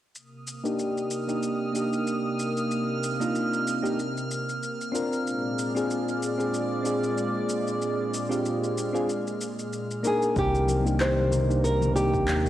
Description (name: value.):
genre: sunset chillout.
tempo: 94 BPM.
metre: 4/4.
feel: swing 56% on 16ths.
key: C minor.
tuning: A4 = 439 Hz.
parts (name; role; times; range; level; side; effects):
lush unison pad; sustained chords; 0.1-12.5 s; Bb2 to Eb6; -31 LUFS; equal; chorus, cassette tape.
electronic shaker and handclaps; drums; 0.2-12.5 s; none; -37 LUFS; left 1 dB; overdrive, small room ambience, cassette tape.
drifting glass-harmonics texture; texture; 1.2-10.4 s; F6; -37 LUFS; right 3 dB; chorus, built-in reverb, cassette tape.
soft electric-piano-like synth keys; accompaniment; 0.6-12.5 s; Bb3 to Bb4; -28 LUFS; equal; chorus, auto-pan, low-pass filter, cassette tape, analog delay.
nylon-string guitar; melody; 10.1-12.5 s; G4 to C5; -26 LUFS; equal; cassette tape.
overdriven fingered electric bass; bass; 10.4-12.5 s; C2 to Eb2; -26 LUFS; equal; none.
electronic kick drum; drums; 10.4-12.2 s; none; -32 LUFS; equal; overdrive, small room ambience, cassette tape.
congas; percussion; 10.7-12.5 s; none; -36 LUFS; left 6 dB; none.
room: wet lush hall reverb, RT60 1.8 s.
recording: home recording on cassette.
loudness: -24 LUFS.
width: side -12 dB against mid.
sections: 0.1-10.4 A section; 10.4-12.5 B section.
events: filter sweep on synth keys 0.1-10.4, 10.4-12.5; filter sweep on analog synth pad 0.1-10.4.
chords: 0.1 Cm7; 5.3 Bb7; 10.4 Cm7.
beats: | 0.15 0.79 1.43 2.06 | 2.70 3.34 3.98 4.62 | 5.25 5.89 6.53 7.17 | 7.81 8.45 9.08 9.72 | 10.36 11.00 11.64 12.28.